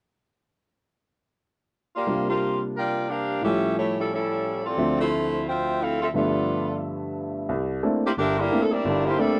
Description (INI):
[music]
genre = jazz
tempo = 177 BPM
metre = 4/4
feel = swing 62% on 8ths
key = C mixolydian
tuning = A4 = 439 Hz
[part]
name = mellow saxophone section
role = melody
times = 1.9-9.4 s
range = G3 to G5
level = -27 LUFS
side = equal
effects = none
[part]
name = warm upright piano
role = accompaniment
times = 2.1-9.4 s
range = G1 to E5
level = -28 LUFS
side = equal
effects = none
[sound]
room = light reverb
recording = dry, close 1970s-style studio recording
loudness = -25 LUFS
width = mono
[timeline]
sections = 0.7-2.1 A section; 2.1-7.5 B section; 7.5-9.4 C section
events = none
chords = 0.7 N.C.; 2.1 C9sus4; 3.4 A7b13; 4.8 Dm9; 6.1 G13; 7.5 C13